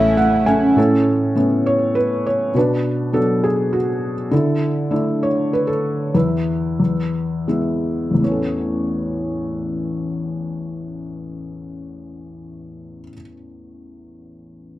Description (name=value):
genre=acoustic folk-pop ballad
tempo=79-102 BPM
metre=3/4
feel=straight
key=A major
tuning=A4 = 439 Hz
part: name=felt-muted upright piano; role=melody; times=0.0-14.8 s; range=A1 to G#5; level=-18 LUFS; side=equal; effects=slapback echo
part: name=clear violin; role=second line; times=0.0-0.5 s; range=C#4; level=-29 LUFS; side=left 5 dB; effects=none
part: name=sweeping resonant pad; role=sustained chords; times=0.0-0.8 s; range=C#3 to E4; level=-29 LUFS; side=right 2 dB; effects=chorus
part: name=concert harp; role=arpeggios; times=0.0-3.4 s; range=C#4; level=-20 LUFS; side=right 2 dB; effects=none
part: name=vintage muted fingered electric bass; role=bass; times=0.0-0.7 s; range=A1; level=-27 LUFS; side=equal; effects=none
room=light reverb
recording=dry, close 1970s-style studio recording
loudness=-17 LUFS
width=side -15 dB against mid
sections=0.8-8.2 A section; 8.2-12.7 B section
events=felt piano fill 0.0-0.8; slowing down 4.3-8.2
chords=0.0 A; 0.8 Aadd9; 4.3 Dsus2; 6.1 N.C.; 6.8 E; 8.2 Aadd9